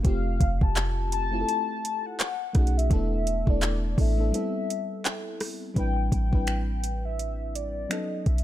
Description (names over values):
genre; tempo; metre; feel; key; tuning
contemporary R&B; 84 BPM; 4/4; swing 58% on 16ths; A minor; A4 = 437 Hz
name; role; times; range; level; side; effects
mellow FM electric piano; accompaniment; 0.0-8.4 s; F#3 to B4; -32 LUFS; left 1 dB; chorus
clean 808-style bass; bass; 0.0-8.4 s; E1 to B1; -26 LUFS; equal; none
smooth R&B drum kit; drums; 0.0-8.4 s; finger snaps, handclaps, hi-hat, kick drum, rim click; -26 LUFS; equal; overdrive
warm velvety synth lead; melody; 0.1-8.4 s; D5 to A5; -32 LUFS; left 3 dB; chorus, phaser, tape echo
room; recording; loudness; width
digital ambience; none; -24 LUFS; side -13 dB against mid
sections
0.0-5.8 A section; 5.8-8.4 B section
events
break 4.3-5.8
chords
0.0 Fmaj7; 2.2 B13; 2.9 E7sus4; 4.3 Am9; 5.8 Am11; 7.9 B7